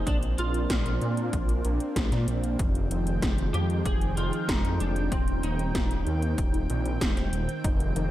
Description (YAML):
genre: synthwave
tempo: 95 BPM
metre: 4/4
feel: straight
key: unclear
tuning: A4 = 442 Hz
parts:
  - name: lightly driven lead guitar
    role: melody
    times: 0.0-6.7 s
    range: C4 to Ab4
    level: -35 LUFS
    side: equal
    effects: ensemble chorus, analog delay
  - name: lush unison pad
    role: sustained chords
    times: 0.0-8.1 s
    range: Eb3 to G5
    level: -33 LUFS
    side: right 1 dB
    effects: chorus, sidechain pumping
  - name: wide detuned saw bass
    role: bass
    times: 0.0-8.1 s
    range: Eb1 to Bb2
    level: -28 LUFS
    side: equal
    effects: chorus, sidechain pumping
  - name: 80s electronic pad drums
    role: drums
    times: 0.1-8.1 s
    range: hi-hat, snare drum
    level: -34 LUFS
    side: equal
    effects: overdrive
  - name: electronic kick drum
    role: drums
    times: 0.1-7.8 s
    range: none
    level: -28 LUFS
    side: equal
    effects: overdrive
  - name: analog pluck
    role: arpeggios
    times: 7.6-8.1 s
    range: Eb3 to Eb4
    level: -33 LUFS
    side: left 2 dB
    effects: chorus
room: light reverb, digital ambience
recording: none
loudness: -24 LUFS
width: side -14 dB against mid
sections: 0.0-8.1 A section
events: none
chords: 0.1 Bbadd9; 2.6 Fm7; 5.1 Cm/Eb